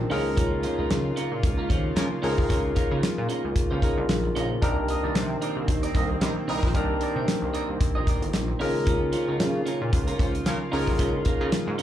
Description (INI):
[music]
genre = early-eighties boogie funk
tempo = 113 BPM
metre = 4/4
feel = swing 56% on 16ths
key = unclear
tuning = A4 = 440 Hz
[part]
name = barky tine electric piano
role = accompaniment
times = 0.0-11.8 s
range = D4 to Bb4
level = -29 LUFS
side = left 2 dB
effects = overdrive, slapback echo
[part]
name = chorused pulse-width pad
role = sustained chords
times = 0.0-11.8 s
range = Db3 to F4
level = -33 LUFS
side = right 1 dB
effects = none
[part]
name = clean electric guitar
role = riff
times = 0.0-11.8 s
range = Db4 to Eb5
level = -33 LUFS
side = right 4 dB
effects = lush chorus, slapback echo
[part]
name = chorused synth bass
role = bass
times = 0.0-11.8 s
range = G1 to Db3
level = -28 LUFS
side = equal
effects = none
[part]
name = damped 70s drum kit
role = drums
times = 0.1-11.8 s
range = hi-hat, kick drum, snare drum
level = -26 LUFS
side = equal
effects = none
[part]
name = warm horn section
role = second line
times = 2.0-2.4, 6.2-6.7, 10.5-10.9 s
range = F3 to Bb4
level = -34 LUFS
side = left 1 dB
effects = slapback echo
[sound]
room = light reverb, small room ambience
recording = live gig heard through the venue's PA, club reverb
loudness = -23 LUFS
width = side -11 dB against mid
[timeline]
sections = 0.0-11.8 A section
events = none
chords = 0.1 Db6; 4.6 Cm9; 8.6 Db6